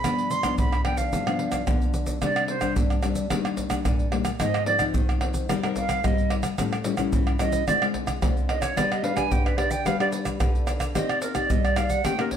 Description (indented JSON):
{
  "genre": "samba and choro",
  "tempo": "110 BPM",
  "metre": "4/4",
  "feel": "straight",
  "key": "C minor",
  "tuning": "A4 = 440 Hz",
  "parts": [
    { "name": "silver concert flute", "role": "second line", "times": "0.0-12.4 s", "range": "Bb4 to C6", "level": "-26 LUFS", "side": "right 4 dB", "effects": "none" },
    { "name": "nylon-string guitar", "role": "accompaniment", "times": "0.0-12.4 s", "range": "G2 to D5", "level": "-28 LUFS", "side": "left 5 dB", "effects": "none" },
    { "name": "egg shaker, surdo, pandeiro and tamborim", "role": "percussion", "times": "0.0-12.4 s", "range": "none", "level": "-25 LUFS", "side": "right 1 dB", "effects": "none" }
  ],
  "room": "wet studio reverb, RT60 0.7 s",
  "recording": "heard from further back in the room",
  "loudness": "-22 LUFS",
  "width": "side -8 dB against mid",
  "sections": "0.0-2.2 A section; 2.2-12.4 B section",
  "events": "flute solo 0.0-2.2, 2.2-12.4",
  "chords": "0.0 G7; 2.2 Csus2; 3.3 Ebmaj7; 4.4 Ab6; 5.5 Cm7/G; 6.6 A7; 7.7 Dm7b5; 8.8 G; 11.0 Cmadd9",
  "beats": "| 0.04 0.58 1.13 1.67 | 2.22 2.77 3.31 3.86 | 4.40 4.95 5.49 6.04 | 6.58 7.13 7.68 8.22 | 8.77 9.31 9.86 10.41 | 10.95 11.50 12.04"
}